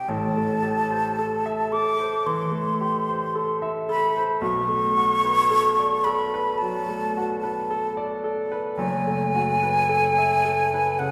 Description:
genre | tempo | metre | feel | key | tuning
classical, impressionist duo for flute and grand piano | 55 BPM | 4/4 | rubato | unclear | A4 = 436 Hz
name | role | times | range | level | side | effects
mellow hollow silver concert flute | melody | 0.0-11.1 s | F#5 to D6 | -25 LUFS | equal | none
clear baby grand piano | accompaniment | 0.0-11.1 s | F#1 to E5 | -28 LUFS | equal | none
room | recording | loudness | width
wet scoring stage reverb, RT60 1.9 s | heard from further back in the room | -23 LUFS | mono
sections
0.0-11.1 A section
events
none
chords
0.1 Am7; 4.4 Bm9; 8.8 F#m11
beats
| 0.08 1.16 2.25 3.34 | 4.41 5.50 6.59 7.68 | 8.78 9.89 11.00

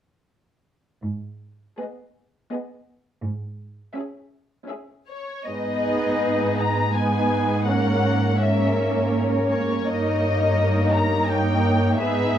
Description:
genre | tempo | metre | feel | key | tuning
classical, slow romantic movement for string orchestra | 82 BPM | 3/4 | uneven beats, rubato | G# minor | A4 = 440 Hz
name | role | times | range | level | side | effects
muted studio cello section | bass | 1.0-12.4 s | G2 to G#2 | -24 LUFS | right 1 dB | none
muted symphonic violin section | melody | 1.8-12.4 s | C#5 to A#5 | -26 LUFS | left 4 dB | none
muted studio violin section | second line | 1.8-12.4 s | G#4 to C#5 | -27 LUFS | left 2 dB | none
muted studio viola section | accompaniment | 1.8-12.4 s | A#3 to D#4 | -24 LUFS | right 2 dB | none
room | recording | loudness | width
light reverb | dark, warm production | -19 LUFS | side -10 dB against mid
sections
1.0-5.5 A section; 5.5-12.4 B section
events
none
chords
1.0 G#m; 3.2 C#m/G#; 5.5 G#m; 7.7 A#m7b5/G#; 9.9 D#7/G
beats
| 1.04 1.80 2.52 | 3.24 3.95 4.69 | 5.48 6.22 6.95 | 7.67 8.40 9.15 | 9.89 10.61 11.31 | 12.01

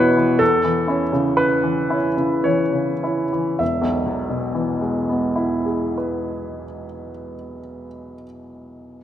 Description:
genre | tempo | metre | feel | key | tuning
classical, romantic character piece for solo piano | 48-65 BPM | 3/4 | rubato | E major | A4 = 441 Hz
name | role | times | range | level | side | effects
clear baby grand piano | solo | 0.0-9.0 s | E1 to E5 | -19 LUFS | equal | none
room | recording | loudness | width
wet concert hall reverb, RT60 2.2 s | none | -18 LUFS | side -10 dB against mid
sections
0.0-3.6 A section; 3.6-6.8 B section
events
slowing down 0.0-3.6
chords
0.4 A/E; 3.6 E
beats
| 0.40 1.38 2.46 | 3.61 4.65 5.71

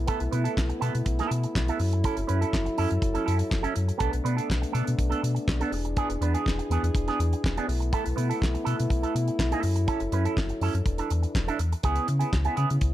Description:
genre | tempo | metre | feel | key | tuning
disco | 122 BPM | 4/4 | straight | F# minor | A4 = 440 Hz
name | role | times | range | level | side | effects
dark French horn section | sustained chords | 0.0-12.9 s | C#3 to A4 | -32 LUFS | left 1 dB | none
sub bass with octave | bass | 0.0-12.9 s | E1 to C#3 | -26 LUFS | equal | none
electric guitar with an envelope filter | accompaniment | 0.1-12.7 s | B3 to B4 | -31 LUFS | right 6 dB | phaser
damped 70s drum kit | drums | 0.1-12.9 s | handclaps, hi-hat, kick drum, snare drum | -30 LUFS | equal | none
room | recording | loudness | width
light reverb | dark, warm production | -24 LUFS | side -13 dB against mid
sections
0.0-11.8 A section; 11.8-12.9 B section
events
none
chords
0.0 B7sus4; 1.8 F#m7; 4.0 Bm7; 5.7 E7; 7.7 B7sus4; 9.6 F#m7; 10.9 E7sus4; 11.8 C#m7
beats
| 0.09 0.58 1.07 1.56 | 2.05 2.54 3.03 3.52 | 4.01 4.50 4.99 5.48 | 5.97 6.46 6.95 7.43 | 7.92 8.41 8.90 9.39 | 9.88 10.37 10.86 11.35 | 11.84 12.33 12.82

